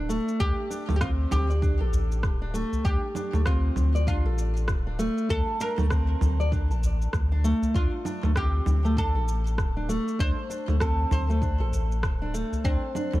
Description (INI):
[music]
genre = organic downtempo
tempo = 98 BPM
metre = 4/4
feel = swing 60% on 16ths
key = unclear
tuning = A4 = 445 Hz
[part]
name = oud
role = melody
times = 0.0-13.2 s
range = C4 to C5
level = -33 LUFS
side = equal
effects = digital delay
[part]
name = nylon-string guitar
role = arpeggios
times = 0.0-13.2 s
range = A3 to A5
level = -31 LUFS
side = equal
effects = digital delay
[part]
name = warm sub bass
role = bass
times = 0.0-13.2 s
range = D1 to D2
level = -25 LUFS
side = equal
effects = sidechain pumping
[part]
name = electronic shaker, congas and rim click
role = drums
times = 0.1-13.2 s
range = none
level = -35 LUFS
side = right 3 dB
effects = small room ambience
[part]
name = electronic kick drum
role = drums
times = 0.4-12.8 s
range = none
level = -28 LUFS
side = equal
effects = small room ambience
[part]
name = udu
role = percussion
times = 1.3-12.6 s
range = none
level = -29 LUFS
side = left 1 dB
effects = none
[sound]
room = studio reverb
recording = dark, warm production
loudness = -23 LUFS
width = side -16 dB against mid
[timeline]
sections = 0.0-13.2 A section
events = none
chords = 0.0 Fadd9/D (rootless); 12.6 D7(no3)